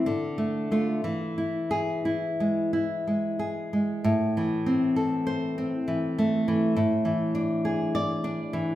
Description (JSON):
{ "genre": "romantic piece for solo classical guitar", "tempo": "58-69 BPM", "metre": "3/4", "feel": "rubato", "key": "A minor", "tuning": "A4 = 440 Hz", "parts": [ { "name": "nylon-string guitar", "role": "solo", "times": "0.0-8.8 s", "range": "A2 to D5", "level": "-24 LUFS", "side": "equal", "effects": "none" } ], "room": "wet recital hall reverb, RT60 1.4 s", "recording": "recorded in a church or concert hall", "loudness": "-24 LUFS", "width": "side -14 dB against mid", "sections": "0.0-4.0 A section; 4.0-8.8 B section", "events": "none", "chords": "0.1 Dm; 1.0 E; 4.0 Am; 6.8 E7/A" }